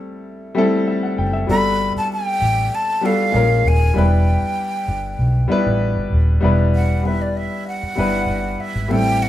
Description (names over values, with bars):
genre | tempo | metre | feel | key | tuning
lush 1970s-style soul | 97 BPM | 4/4 | straight | E minor | A4 = 440 Hz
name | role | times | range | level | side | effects
clear grand piano | accompaniment | 0.0-9.3 s | G3 to G5 | -20 LUFS | left 2 dB | none
vintage muted fingered electric bass | bass | 1.2-9.3 s | D#1 to B1 | -18 LUFS | equal | none
breathy jazz flute | melody | 1.5-9.3 s | D5 to B5 | -22 LUFS | equal | none
room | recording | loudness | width
moderate studio reverb, RT60 0.6 s | band playing live in one room, faint mains hum | -16 LUFS | side -13 dB against mid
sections
0.0-6.4 A section; 6.4-9.3 B section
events
flute solo 6.4-9.3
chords
0.0 Am7; 1.5 Gmaj9; 3.3 A#m7; 4.0 Em7